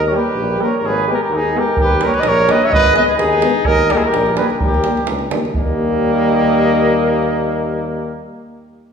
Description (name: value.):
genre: balkan folk, Balkan brass band.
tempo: 127 BPM.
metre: 2/4.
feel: swing 53% on 16ths.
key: unclear.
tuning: A4 = 440 Hz.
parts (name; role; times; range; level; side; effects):
mellow flugelhorn; melody; 0.0-8.2 s; Ab4 to Fb5; -18 LUFS; right 1 dB; none.
clear trumpet; second line; 0.0-8.2 s; Bb3 to Db5; -20 LUFS; equal; none.
warm tuba; bass; 0.0-8.2 s; Ab1 to Eb2; -22 LUFS; left 1 dB; none.
dark euphonium; accompaniment; 0.1-8.2 s; Bb3 to Cb4; -22 LUFS; left 6 dB; none.
warm trombone; accompaniment; 0.1-8.2 s; G3 to Ab3; -23 LUFS; right 4 dB; none.
davul; percussion; 1.8-5.8 s; none; -21 LUFS; right 1 dB; none.
room: wet recital hall reverb, RT60 1.8 s.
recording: recorded in a church or concert hall.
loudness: -13 LUFS.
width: side -6 dB against mid.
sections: 0.0-5.6 A section; 5.6-7.4 B section.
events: none.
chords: 0.0 Eb; 0.8 Abm; 1.8 Eb; 2.7 Abm; 3.7 Eb.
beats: 0.36 | 0.83 1.30 | 1.78 2.25 | 2.72 3.19 | 3.66 4.14 | 4.61 5.08 | 5.55 6.03 | 6.50 6.97.